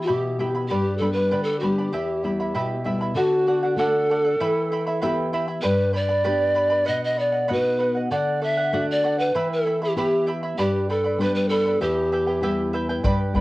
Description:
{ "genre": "andean folk, Andean ensemble", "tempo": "97 BPM", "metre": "2/4", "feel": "straight", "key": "E minor", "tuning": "A4 = 440 Hz", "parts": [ { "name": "breathy mellow pan flute", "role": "melody", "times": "0.0-12.7 s", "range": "F#4 to E5", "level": "-22 LUFS", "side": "equal", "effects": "cassette tape" }, { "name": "charango", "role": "accompaniment", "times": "0.0-13.4 s", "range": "E4 to B5", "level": "-28 LUFS", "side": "right 2 dB", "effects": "cassette tape" }, { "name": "nylon-string guitar", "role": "accompaniment", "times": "0.0-13.4 s", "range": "E2 to G4", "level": "-26 LUFS", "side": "left 1 dB", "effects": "cassette tape" }, { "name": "bombo", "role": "percussion", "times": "13.0-13.4 s", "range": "none", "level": "-23 LUFS", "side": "equal", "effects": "none" } ], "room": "wet studio reverb, RT60 0.6 s", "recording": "home recording on cassette", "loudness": "-20 LUFS", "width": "side -19 dB against mid", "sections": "0.0-3.2 A section; 3.2-13.0 A section", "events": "none", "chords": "0.0 Em; 0.7 G; 1.9 Em; 3.2 D; 4.4 Em; 5.6 G; 6.9 B; 8.1 D; 9.3 Em; 10.6 G; 11.8 Em" }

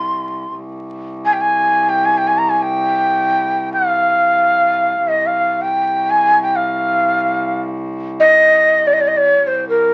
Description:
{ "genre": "Arabic maqam ensemble", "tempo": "free time", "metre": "none", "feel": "none", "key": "C maqam bayati", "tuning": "A4 = 440 Hz", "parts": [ { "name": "breathy bright ney", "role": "melody", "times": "0.0-9.9 s", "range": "Bb4 to C6", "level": "-15 LUFS", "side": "equal", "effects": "none" }, { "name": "warm cello", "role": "drone", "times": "0.0-9.9 s", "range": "C2", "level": "-28 LUFS", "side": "equal", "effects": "none" } ], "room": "moderate studio ambience, RT60 0.5 s", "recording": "very old 78 rpm record, vinyl crackle", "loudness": "-15 LUFS", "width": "mono", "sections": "0.0-9.9 A section", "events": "none", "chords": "none" }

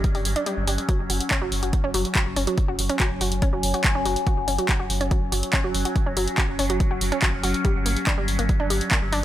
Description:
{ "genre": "driving peak-time techno", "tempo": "142 BPM", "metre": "4/4", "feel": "straight", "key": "unclear", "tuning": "A4 = 440 Hz", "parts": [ { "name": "analog pluck", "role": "riff", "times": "0.0-9.2 s", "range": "F#3 to G4", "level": "-28 LUFS", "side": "right 1 dB", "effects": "chorus, sidechain pumping, digital delay" }, { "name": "saturated sub bass", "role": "bass", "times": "0.0-9.2 s", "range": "F#1 to G1", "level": "-27 LUFS", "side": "equal", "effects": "tube saturation, sidechain pumping, low-pass filter" }, { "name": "overtone-sweeping drone", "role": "drone", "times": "0.0-9.2 s", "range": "F#3 to C#4", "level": "-29 LUFS", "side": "left 2 dB", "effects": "chorus, built-in reverb, sidechain pumping" }, { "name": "electronic kick drum", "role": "drums", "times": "0.0-9.0 s", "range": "none", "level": "-24 LUFS", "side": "equal", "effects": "none" }, { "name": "punchy analog drum machine", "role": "drums", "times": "0.0-9.2 s", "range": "handclaps, hi-hat", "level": "-26 LUFS", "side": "equal", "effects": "sidechain pumping on hats" } ], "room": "light reverb", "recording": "none", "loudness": "-20 LUFS", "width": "side -13 dB against mid", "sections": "0.0-9.2 A section", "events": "kick drops out 0.5-0.9", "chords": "0.0 G5; 0.9 F#5; 7.6 Gm" }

